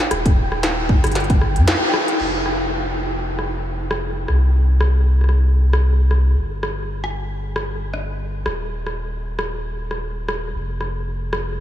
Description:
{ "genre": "IDM", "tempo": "115 BPM", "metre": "4/4", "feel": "swing 56% on 16ths", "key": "unclear", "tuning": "A4 = 440 Hz", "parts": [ { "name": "flickering grainy texture", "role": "texture", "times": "0.0-2.2 s", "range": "G5", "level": "-30 LUFS", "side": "equal", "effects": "built-in reverb" }, { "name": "warm sub bass", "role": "bass", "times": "0.1-11.6 s", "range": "Eb1 to G2", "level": "-19 LUFS", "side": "equal", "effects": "none" }, { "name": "industrial drum kit", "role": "drums", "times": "0.1-11.4 s", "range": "crash cymbal, hi-hat, rim click, snare drum", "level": "-23 LUFS", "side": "equal", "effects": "low-pass filter on hats, low-pass filter on snare, low-pass filter on cymbals, low-pass filter on room, analog delay" }, { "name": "electronic kick drum", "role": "drums", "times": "0.3-1.4 s", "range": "none", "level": "-17 LUFS", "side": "equal", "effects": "none" } ], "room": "moderate huge ambient reverb, RT60 7.8 s", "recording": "dreamy mix soaked in reverb, small room ambience", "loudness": "-18 LUFS", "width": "side -12 dB against mid", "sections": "0.0-2.2 A section; 2.2-11.6 B section", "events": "band accent 1.7", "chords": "0.1 Eb; 1.2 N.C." }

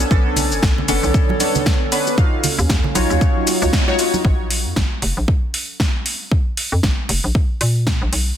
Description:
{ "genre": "deep house", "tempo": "116 BPM", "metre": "4/4", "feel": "swing 58% on 16ths", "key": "unclear", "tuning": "A4 = 444 Hz", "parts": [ { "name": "warm analog keys", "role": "stabs", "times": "0.0-4.2 s", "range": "B3 to F5", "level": "-21 LUFS", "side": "equal", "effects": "chorus, phaser, sidechain pumping, tape echo" }, { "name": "hollow knocking FM bass", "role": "bass", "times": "0.0-8.3 s", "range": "F1 to Bb2", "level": "-20 LUFS", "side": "equal", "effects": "none" }, { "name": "deep house drum kit", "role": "drums", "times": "0.0-8.2 s", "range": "hi-hat, shaker, snare drum", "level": "-22 LUFS", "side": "equal", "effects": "overdrive, small room ambience" }, { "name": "analog string pad", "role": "texture", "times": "0.0-4.3 s", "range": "Ab5", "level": "-37 LUFS", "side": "left 1 dB", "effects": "none" }, { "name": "warbly tape-like pad", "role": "texture", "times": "0.0-4.2 s", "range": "D3 to F5", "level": "-27 LUFS", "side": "equal", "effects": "chorus, built-in reverb, sidechain pumping" }, { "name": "electronic kick drum", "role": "drums", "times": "0.1-8.0 s", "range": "none", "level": "-17 LUFS", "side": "equal", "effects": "overdrive, small room ambience" }, { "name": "congas and bongos", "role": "percussion", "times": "0.4-4.2 s", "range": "none", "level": "-26 LUFS", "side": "right 5 dB", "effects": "none" } ], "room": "light reverb", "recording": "dense, heavily limited modern master", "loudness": "-15 LUFS", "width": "side -10 dB against mid", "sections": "0.0-4.2 A section; 4.2-8.4 B section", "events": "drop 0.0-4.2; band accent 3.7", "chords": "0.0 Bm9; 2.2 Ebm9; 4.2 Bb5" }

